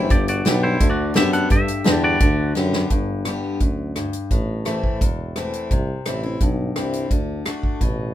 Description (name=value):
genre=honky-tonk and classic country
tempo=171 BPM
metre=4/4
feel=straight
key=G major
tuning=A4 = 441 Hz
part: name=picked steel-string acoustic guitar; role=accompaniment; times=0.0-8.1 s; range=E2 to G4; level=-24 LUFS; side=left 3 dB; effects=none
part: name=warm tuba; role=bass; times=0.0-8.1 s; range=E1 to G2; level=-25 LUFS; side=right 1 dB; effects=none
part: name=twangy electric guitar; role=melody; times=0.1-2.5 s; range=E4 to F#5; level=-23 LUFS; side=equal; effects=none
part: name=natural country drum kit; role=drums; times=0.1-7.9 s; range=hi-hat, kick drum, rim click, snare drum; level=-21 LUFS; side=equal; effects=none
room=light reverb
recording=minimal, uncompressed stereo recording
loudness=-18 LUFS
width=side -12 dB against mid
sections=0.0-2.9 A section; 2.9-8.1 B section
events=drum fill 2.6-2.9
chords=0.1 G; 4.3 Am; 5.7 C; 7.1 D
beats=| 0.11 0.46 0.81 1.16 | 1.51 1.86 2.21 2.56 | 2.91 3.26 3.61 3.96 | 4.31 4.66 5.01 5.36 | 5.71 6.06 6.41 6.76 | 7.11 7.46 7.81